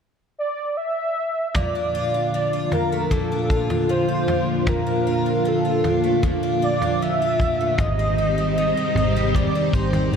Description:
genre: dream pop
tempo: 77 BPM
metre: 4/4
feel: straight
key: Bb major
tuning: A4 = 440 Hz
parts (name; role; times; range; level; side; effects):
- warm velvety synth lead; melody; 0.4-10.2 s; A4 to E5; -24 LUFS; right 1 dB; chorus, tape echo
- vintage drum kit; drums; 1.5-10.1 s; kick drum, toms; -26 LUFS; equal; none
- string machine, full ensemble; sustained chords; 1.6-10.2 s; Bb2 to G4; -23 LUFS; equal; ensemble chorus
- picked twelve-string acoustic guitar; arpeggios; 1.6-10.2 s; Ab2 to F4; -26 LUFS; left 1 dB; wide subtle chorus, tape echo
- vintage muted picked electric bass; bass; 7.8-10.2 s; Ab1; -24 LUFS; equal; none
room: moderate concert hall reverb, RT60 1.9 s, studio ambience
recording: dark, warm production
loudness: -19 LUFS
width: side -7 dB against mid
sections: 0.0-1.6 A section; 1.6-10.2 B section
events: none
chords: 0.0 N.C.; 1.6 Bbmaj7; 7.8 Abmaj7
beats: 0.77 | 1.55 2.33 3.11 3.89 | 4.67 5.45 6.23 7.01 | 7.79 8.56 9.34 10.12

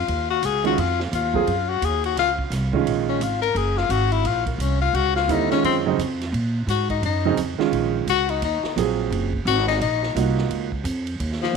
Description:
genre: modal jazz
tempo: 173 BPM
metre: 4/4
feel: swing 62% on 8ths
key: Eb dorian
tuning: A4 = 440 Hz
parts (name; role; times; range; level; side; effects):
- clear tenor saxophone; second line; 0.0-11.6 s; F3 to Bb4; -22 LUFS; left 10 dB; none
- upright bass; bass; 0.0-11.6 s; Gb1 to Bb2; -25 LUFS; right 1 dB; none
- swinging big-band drum kit; drums; 0.1-11.5 s; hi-hat, kick drum, ride cymbal, snare drum; -33 LUFS; right 6 dB; none
- warm baby grand piano; accompaniment; 0.6-3.2, 5.3-10.7 s; Db3 to Ab4; -23 LUFS; right 12 dB; none
room: moderate echo chamber reverb, RT60 1.5 s, small room ambience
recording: 1960s-style stereo with parts hard left and right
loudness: -20 LUFS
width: side -5 dB against mid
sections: 0.0-11.6 A section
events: tenor saxophone solo 0.0-11.6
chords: 0.0 Ebm11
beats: | 0.07 0.42 0.77 1.12 | 1.47 1.81 2.16 2.51 | 2.86 3.20 3.55 3.90 | 4.25 4.59 4.94 5.29 | 5.64 5.99 6.33 6.68 | 7.03 7.38 7.72 8.07 | 8.42 8.77 9.11 9.46 | 9.81 10.16 10.51 10.85 | 11.20 11.55

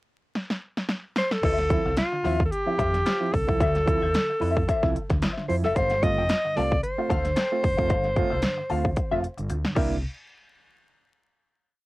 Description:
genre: funk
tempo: 112 BPM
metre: 4/4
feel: swing 56% on 16ths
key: unclear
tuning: A4 = 443 Hz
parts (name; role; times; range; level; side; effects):
- big-room dance drum kit; drums; 0.4-9.9 s; crash cymbal, hi-hat, kick drum, snare drum; -27 LUFS; equal; overdrive, cassette tape
- breathy alto saxophone; melody; 1.2-9.5 s; F4 to Eb5; -26 LUFS; equal; none
- vintage hollow-body jazz guitar; accompaniment; 1.4-9.9 s; F4 to G5; -31 LUFS; left 5 dB; wah, cassette tape
- overdriven reed electric piano; stabs; 1.4-10.0 s; G2 to F4; -31 LUFS; right 4 dB; fast tremolo, cassette tape
- overdriven fingered electric bass; bass; 1.4-10.0 s; F1 to F2; -29 LUFS; equal; none
room: light reverb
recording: home recording on cassette, vinyl crackle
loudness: -22 LUFS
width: side -19 dB against mid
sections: 0.0-1.4 pickup bar; 1.4-10.0 bridge; 10.0-11.9 final hit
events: drum fill 0.4-1.4, 9.0-10.0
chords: 0.0 N.C.; 1.4 Dm9; 5.8 G9sus4; 9.8 C7; 10.0 N.C.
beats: 0.35 0.89 | 1.44 1.98 2.52 3.06 | 3.60 4.14 4.68 5.22 | 5.76 6.30 6.84 7.37 | 7.91 8.44 8.97 9.50

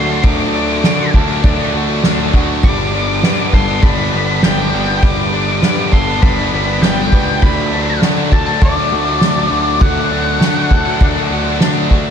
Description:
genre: post-rock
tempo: 100 BPM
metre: 4/4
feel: straight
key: G major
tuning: A4 = 442 Hz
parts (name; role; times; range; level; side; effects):
- octave-fuzz lead guitar; melody; 0.0-11.6 s; D5 to D6; -20 LUFS; left 2 dB; distortion, slapback echo, digital delay
- electric guitar through a small old amp; arpeggios; 0.0-12.1 s; D3 to A4; -23 LUFS; left 4 dB; spring reverb, slapback echo, digital delay
- distorted electric guitar; riff; 0.0-12.1 s; G2 to D4; -22 LUFS; left 12 dB; overdrive, slapback echo
- tight distorted guitar; riff; 0.0-12.1 s; G2 to D4; -22 LUFS; right 12 dB; distortion, slapback echo
- fuzz picked electric bass; bass; 0.0-12.1 s; G1 to D3; -20 LUFS; equal; overdrive
- soft-mallet drum kit; drums; 0.2-12.1 s; crash cymbal, kick drum, snare drum; -15 LUFS; equal; none
room: light reverb, studio reverb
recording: none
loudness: -11 LUFS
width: side -8 dB against mid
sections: 0.0-12.1 A section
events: none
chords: 0.0 D; 2.6 Gadd9; 7.4 D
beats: | 0.24 0.84 1.44 2.04 | 2.64 3.24 3.84 4.44 | 5.04 5.64 6.24 6.83 | 7.43 8.03 8.63 9.22 | 9.82 10.42 11.02 11.62

